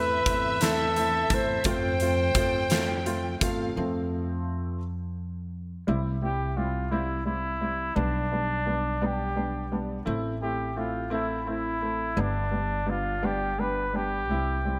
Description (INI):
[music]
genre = six-eight pop ballad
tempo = 57 BPM (dotted quarters)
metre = 6/8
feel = straight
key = C major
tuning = A4 = 443 Hz
[part]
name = warm flugelhorn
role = melody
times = 0.0-14.8 s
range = D4 to C5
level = -31 LUFS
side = equal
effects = digital delay
[part]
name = warm symphonic violin section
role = second line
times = 0.0-3.7 s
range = E5 to G5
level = -36 LUFS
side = equal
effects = none
[part]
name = warm upright piano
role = accompaniment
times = 0.0-14.8 s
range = F3 to F4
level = -33 LUFS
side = equal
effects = analog chorus
[part]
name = upright bass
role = bass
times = 0.0-14.8 s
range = G1 to F2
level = -34 LUFS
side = equal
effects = none
[part]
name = huge arena drum kit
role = drums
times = 0.3-3.6 s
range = hi-hat, kick drum, snare drum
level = -32 LUFS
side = equal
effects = gated reverb
[sound]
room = moderate plate reverb, RT60 2.4 s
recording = bright 1980s-style digital production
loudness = -28 LUFS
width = mono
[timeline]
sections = 0.0-3.8 A section; 3.8-5.9 B section; 5.9-14.8 C section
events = upright piano solo 3.8-5.9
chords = 0.0 Am/E; 1.7 F; 5.9 C; 8.0 G/B; 10.1 Am; 12.2 G